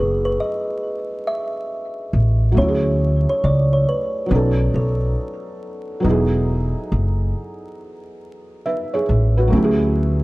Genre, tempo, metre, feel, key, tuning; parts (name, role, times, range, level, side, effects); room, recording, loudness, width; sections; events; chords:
lo-fi hip hop; 69 BPM; 4/4; swing 65% on 16ths; E major; A4 = 440 Hz
kalimba; melody; 0.0-5.4 s; A4 to E5; -24 LUFS; equal
felt-muted upright piano; accompaniment; 0.0-10.2 s; F#3 to E5; -23 LUFS; right 1 dB
upright bass; bass; 0.0-10.2 s; E1 to D2; -17 LUFS; equal
moderate spring reverb, RT60 1.9 s, small room ambience; dark, warm production, vinyl crackle; -17 LUFS; side -20 dB against mid
0.0-10.2 A section
0.0 Emaj9; 2.6 Dmaj9#11; 4.3 B9; 6.0 Emaj9; 9.5 Dmaj9#11